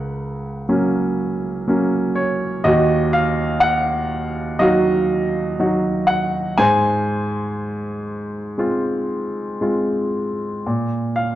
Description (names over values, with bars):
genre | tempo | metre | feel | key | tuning
classical, lyrical solo piano | 61 BPM | 4/4 | rubato | unclear | A4 = 440 Hz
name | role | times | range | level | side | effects
clear baby grand piano | solo | 0.0-11.4 s | Db2 to Ab5 | -18 LUFS | equal | none
room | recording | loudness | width
moderate recital hall reverb, RT60 1.3 s | dark, warm production | -18 LUFS | side -13 dB against mid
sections
0.0-11.4 A section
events
none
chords
0.0 Gb/Db; 2.6 Ebmadd9; 6.6 Ab6; 10.7 Bb5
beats
0.68 1.67 | 2.64 3.62 4.60 5.59 | 6.58 7.57 8.57 9.61 | 10.65